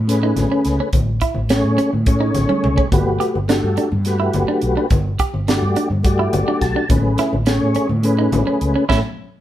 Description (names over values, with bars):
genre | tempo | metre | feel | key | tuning
electric jazz fusion | 211 BPM (eighths) | 7/8 | straight | unclear | A4 = 441 Hz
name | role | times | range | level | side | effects
fretless electric bass | bass | 0.0-9.0 s | G1 to A2 | -20 LUFS | equal | none
mellow tonewheel organ | accompaniment | 0.1-9.0 s | A3 to A5 | -20 LUFS | left 1 dB | slow rotary speaker, chorus vibrato
crisp fusion drum kit | drums | 0.1-9.0 s | hi-hat, kick drum, snare drum, toms | -20 LUFS | equal | none
congas | percussion | 0.1-9.0 s | none | -26 LUFS | left 2 dB | none
clean electric guitar | stabs | 0.2-9.0 s | A3 to G4 | -22 LUFS | right 3 dB | none
room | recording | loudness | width
light reverb | band playing live in one room | -15 LUFS | side -12 dB against mid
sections
0.0-9.4 A section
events
drum fill 2.5-2.9; tonewheel organ fill 6.1-6.9; band accent 8.9-9.4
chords
0.0 Amaj9; 2.9 Gmaj9; 6.9 Amaj9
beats
0.09 0.37 0.66 | 0.94 1.23 1.51 1.79 2.08 2.36 2.64 | 2.93 3.21 3.49 3.78 4.06 4.35 4.63 | 4.92 5.20 5.48 5.77 6.05 6.34 6.62 | 6.91 7.19 7.47 7.76 8.04 8.33 8.61 | 8.90